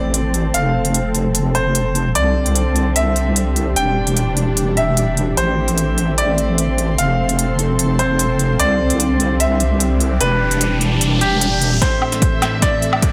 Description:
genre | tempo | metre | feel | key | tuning
heavy wobble dubstep | 149 BPM | 4/4 | half-time | A minor | A4 = 440 Hz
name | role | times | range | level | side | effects
bright grand piano | melody | 0.0-13.1 s | G4 to G5 | -23 LUFS | equal | digital delay
muted studio string section | sustained chords | 0.0-13.1 s | A2 to E5 | -26 LUFS | equal | sidechain pumping, low-pass filter
wobble bass | bass | 0.0-11.8 s | E1 to C2 | -21 LUFS | equal | chorus, overdrive
impact and riser | sound effects | 0.0-0.5, 9.8-13.1 s | none | -28 LUFS | equal | none
granular cloud pad | texture | 0.1-13.1 s | C4 to C6 | -27 LUFS | equal | built-in reverb, sidechain pumping
big-room dance drum kit | drums | 0.1-13.1 s | hi-hat, snare drum, woodblock | -23 LUFS | equal | overdrive, high-pass filter on hats, high-pass filter on perc, high-pass filter on snare, high-pass filter on toms, high-pass filter on cymbals, high-pass filter on room
electronic kick drum | drums | 11.8-13.1 s | none | -20 LUFS | equal | overdrive
room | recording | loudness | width
light reverb | none | -17 LUFS | mono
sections
0.0-11.8 A section; 11.8-13.1 B section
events
impact 0.0-0.5; riser 9.8-11.8; build-up 11.8-13.1; drum fill 11.8-13.1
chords
0.0 Am; 0.5 F; 2.2 Csus2; 3.8 Em7; 5.4 Am; 7.0 F; 8.6 Csus2; 10.2 Em7; 11.8 Am

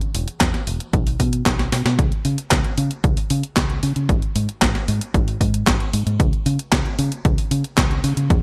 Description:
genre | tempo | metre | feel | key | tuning
italo disco | 114 BPM | 4/4 | straight | C# minor | A4 = 441 Hz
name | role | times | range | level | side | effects
clean 12-bit digital drum machine | drums | 0.0-8.4 s | handclaps, hi-hat, snare drum | -25 LUFS | equal | overdrive, gated reverb
fingered electric bass | bass | 0.1-8.4 s | E1 to C#3 | -24 LUFS | equal | none
electronic kick drum | drums | 0.4-8.4 s | none | -23 LUFS | equal | none
room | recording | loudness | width
little or no reverb | none | -20 LUFS | mono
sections
0.0-2.0 A section; 2.0-8.4 B section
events
drum fill 1.6-2.0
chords
none

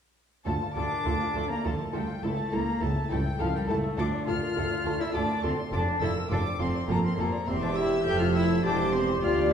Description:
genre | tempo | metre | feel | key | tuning
classical, baroque-style concerto movement with solo episodes | 103 BPM | 3/4 | straight | D minor | A4 = 440 Hz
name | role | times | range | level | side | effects
warm cello | melody | 0.5-9.5 s | F3 to G4 | -30 LUFS | left 2 dB | none
warm chamber violin section | melody | 0.5-9.5 s | F5 to G6 | -35 LUFS | left 3 dB | none
rich chamber violin section | second line | 0.5-9.5 s | A4 to E5 | -36 LUFS | left 2 dB | none
dark chamber viola section | accompaniment | 0.5-9.5 s | E4 to A4 | -33 LUFS | right 2 dB | none
lute | accompaniment | 0.5-9.5 s | D2 to F5 | -38 LUFS | equal | none
rich chamber cello section | bass | 0.5-9.5 s | C#2 to F2 | -32 LUFS | right 2 dB | none
rich chamber double bass section | bass | 0.5-9.5 s | E1 to D2 | -32 LUFS | right 2 dB | none
room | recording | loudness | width
wet recital hall reverb, RT60 1.3 s | heard from further back in the room | -25 LUFS | side -8 dB against mid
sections
0.5-9.5 A section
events
none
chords
0.5 Dm; 2.2 A/C#; 4.0 Dm; 5.7 Dm/F; 7.5 C/E

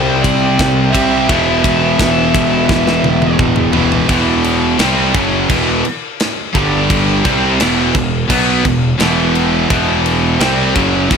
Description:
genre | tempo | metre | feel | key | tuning
heavy metal | 86 BPM | 4/4 | straight | E minor | A4 = 440 Hz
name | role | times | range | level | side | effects
high-gain lead guitar | melody | 0.0-3.3 s | C5 to E5 | -19 LUFS | right 1 dB | distortion, tape echo
distorted electric guitar | riff | 0.0-11.2 s | E2 to C4 | -18 LUFS | left 10 dB | distortion
distorted electric guitar | riff | 0.0-11.2 s | E2 to C4 | -17 LUFS | right 10 dB | overdrive
high-gain distorted guitar | riff | 0.0-11.2 s | E2 to C4 | -19 LUFS | left 2 dB | distortion
fuzz picked electric bass | bass | 0.0-11.2 s | E1 to C2 | -19 LUFS | equal | overdrive
tight metal drum kit | drums | 0.2-11.2 s | crash cymbal, kick drum, ride cymbal, snare drum, toms | -18 LUFS | left 1 dB | none
room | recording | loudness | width
small room ambience | none | -11 LUFS | side -6 dB against mid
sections
0.0-4.1 A section; 4.1-11.2 B section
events
drum fill 2.7-4.1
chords
0.0 C; 1.3 E5; 4.1 Em; 6.5 G5; 7.2 Em

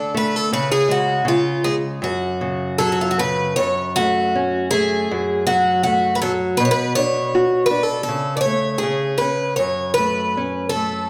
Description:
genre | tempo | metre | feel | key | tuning
fado-style ballad | 80 BPM | 2/4 | rubato | F# harmonic minor | A4 = 437 Hz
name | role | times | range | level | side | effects
picked twelve-string acoustic guitar | melody | 0.0-11.1 s | E#4 to D5 | -21 LUFS | equal | none
nylon-string guitar | accompaniment | 0.0-11.1 s | F#2 to F#4 | -24 LUFS | equal | none
room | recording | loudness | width
wet recital hall reverb, RT60 1.6 s | none | -19 LUFS | mono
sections
0.0-3.6 A section; 3.6-11.1 A section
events
none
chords
0.0 D5; 0.5 C#sus4; 2.0 F#5; 3.6 F#m; 5.1 F#madd9; 6.6 Bm; 8.1 A/C#; 8.8 N.C.; 9.6 F#m

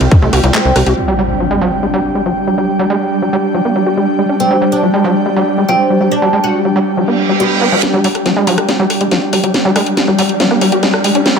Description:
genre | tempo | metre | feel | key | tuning
psychedelic trance | 140 BPM | 4/4 | straight | unclear | A4 = 437 Hz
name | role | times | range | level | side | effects
swarming drone | sustained chords | 0.0-11.4 s | G3 | -18 LUFS | equal | built-in reverb, sidechain pumping
tight sequencer bass | bass | 0.0-0.9 s | C2 | -12 LUFS | equal | none
garage drum kit | drums | 0.0-1.1, 7.8-11.3 s | crash cymbal, handclaps, hi-hat, ride cymbal, rim click, snare drum | -16 LUFS | equal | low-pass filter on hats, studio reverb, low-pass filter on cymbals, low-pass filter on snare
airy breathy pad | texture | 0.0-11.4 s | C4 to G5 | -18 LUFS | equal | chorus, sidechain pumping
overdriven acid bass | riff | 0.1-11.4 s | E3 to G4 | -16 LUFS | equal | distortion, auto-pan, sidechain pumping, dub echo
oud | melody | 0.5-0.7, 4.4-7.6 s | B3 to F#4 | -18 LUFS | right 2 dB | phaser, sidechain pumping, tape echo
impact, reverse cymbal and riser | sound effects | 1.0-2.7, 7.1-11.4 s | none | -20 LUFS | right 2 dB | none
room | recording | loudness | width
moderate plate reverb, RT60 1.6 s | high-pass filter | -11 LUFS | side -6 dB against mid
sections
1.0-7.8 A section; 7.8-11.4 B section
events
impact 1.0-2.7; filter sweep on synth drone 1.0-7.8; reverse cymbal 7.1-7.8; build-up 7.8-11.4; drum fill 7.8-11.4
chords
0.0 F5; 1.0 G5

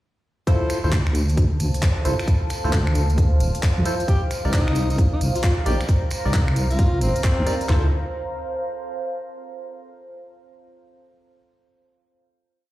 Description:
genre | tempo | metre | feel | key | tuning
UK garage, two-step garage | 133 BPM | 4/4 | swing 64% on 16ths | D phrygian | A4 = 440 Hz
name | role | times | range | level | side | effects
percussive organ stab | stabs | 0.5-7.9 s | Eb4 to D5 | -28 LUFS | equal | wide subtle chorus, digital delay
garage drum kit | drums | 0.5-7.8 s | handclaps, kick drum, snare drum | -21 LUFS | equal | none
garage drum kit | drums | 0.5-7.7 s | finger snaps, handclaps, hi-hat | -31 LUFS | equal | none
tambourine | percussion | 0.5-7.7 s | none | -38 LUFS | right 1 dB | none
deep dark ambient pad | texture | 1.3-9.5 s | C5 to Bb5 | -30 LUFS | right 2 dB | chorus, built-in reverb, sidechain pumping
deep soft wobble bass | bass | 0.8-7.9 s | D1 to F2 | -20 LUFS | equal | chorus
clear alto saxophone | melody | 4.1-7.6 s | C4 to G4 | -28 LUFS | left 1 dB | digital delay
room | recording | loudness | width
light reverb | played on a big sound system in a bare room, stone room reverb | -19 LUFS | side -16 dB against mid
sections
0.5-7.7 drop; 7.7-9.5 final chord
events
drop 0.5-7.7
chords
0.5 Dm9; 4.1 Cm9; 7.7 Dm9 (rootless)

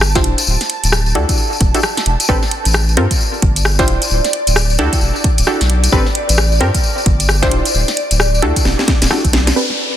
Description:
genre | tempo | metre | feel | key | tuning
UK garage, two-step garage | 132 BPM | 4/4 | swing 61% on 16ths | unclear | A4 = 440 Hz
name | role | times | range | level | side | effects
ethereal airy pad | sustained chords | 0.0-10.0 s | D5 to A5 | -23 LUFS | right 1 dB | ensemble chorus, built-in reverb, phaser, sidechain pumping
saturated sub bass | bass | 0.0-9.5 s | D1 to G2 | -15 LUFS | equal | none
house drum kit | drums | 0.0-10.0 s | hi-hat, rim click, snare drum | -18 LUFS | equal | soft clipping on snare, low-pass filter on snare, low-pass filter on hats
tambourine | percussion | 0.0-9.5 s | none | -21 LUFS | left 4 dB | none
punchy chord stab | stabs | 0.2-9.7 s | C4 to C5 | -19 LUFS | equal | chorus, dub echo
electronic kick drum | drums | 0.2-9.3 s | none | -16 LUFS | equal | none
downlifter | sound effects | 9.6-10.0 s | none | -18 LUFS | left 1 dB | none
room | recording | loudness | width
light reverb | dense, heavily limited modern master | -12 LUFS | side -11 dB against mid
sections
0.0-9.6 A section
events
drum fill 8.7-9.6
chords
0.2 Dm11; 1.4 Em11; 2.3 Am11; 3.0 G7sus4; 3.9 Dm11; 5.0 Em11; 5.9 Am11; 6.6 G7sus4; 7.5 Dm11; 8.7 Em11

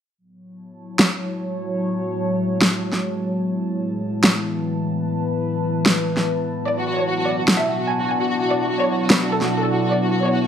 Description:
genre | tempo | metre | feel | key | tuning
heavy wobble dubstep | 148 BPM | 4/4 | half-time | F# minor | A4 = 440 Hz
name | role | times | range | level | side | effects
evolving wavetable pad | sustained chords | 1.3-10.5 s | A2 to D4 | -25 LUFS | left 1 dB | chorus, built-in reverb
warbly tape-like pad | texture | 0.5-10.5 s | F#3 to A5 | -25 LUFS | equal | chorus, built-in reverb, phaser
electronic snare drum | drums | 1.0-9.5 s | none | -17 LUFS | equal | none
warm symphonic violin section | melody | 6.7-10.5 s | F#4 to G#5 | -21 LUFS | equal | none
room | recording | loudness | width
moderate digital room reverb, RT60 1.1 s | none | -18 LUFS | side -8 dB against mid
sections
0.2-10.5 A section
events
filter sweep on ambient pad 0.2-10.5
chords
0.2 F#madd9; 6.7 Bm

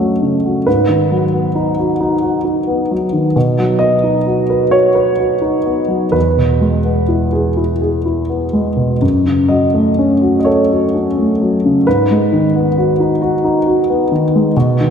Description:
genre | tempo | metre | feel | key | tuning
neoclassical minimalist piano | 41-45 BPM (dotted quarters) | 6/8 | rubato | unclear | A4 = 440 Hz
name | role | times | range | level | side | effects
dark grand piano | solo | 0.0-14.9 s | E2 to D#5 | -12 LUFS | equal | none
room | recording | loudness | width
wet lush hall reverb, RT60 2.9 s | dreamy mix soaked in reverb | -12 LUFS | side -7 dB against mid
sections
0.0-14.9 A section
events
none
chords
0.0 F#m; 0.7 G#m7; 3.4 B; 6.2 E; 9.0 F#m; 11.9 G#m7

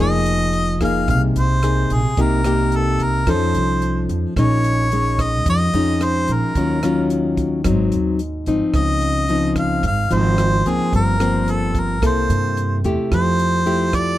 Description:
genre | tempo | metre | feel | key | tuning
bossa nova | 110 BPM | 4/4 | straight | F minor | A4 = 439 Hz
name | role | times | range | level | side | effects
warm harmonica | melody | 0.0-14.2 s | Ab4 to F5 | -22 LUFS | equal | none
nylon-string guitar | accompaniment | 0.0-14.2 s | G2 to A4 | -19 LUFS | left 2 dB | none
upright bass | bass | 0.0-14.2 s | F1 to G2 | -21 LUFS | right 1 dB | none
compact cocktail drum kit | drums | 0.3-14.1 s | hi-hat, kick drum, rim click | -25 LUFS | right 1 dB | none
room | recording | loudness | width
little or no reverb | dark, warm production | -16 LUFS | side -14 dB against mid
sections
0.0-14.2 A section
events
none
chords
0.0 Fm7; 2.2 Cm7; 3.3 F7b13; 4.4 Bbm7; 6.6 Ebm9; 7.6 Ab7; 8.7 Dbmaj9; 10.9 Gm7; 12.0 C6; 13.1 Fmaj9

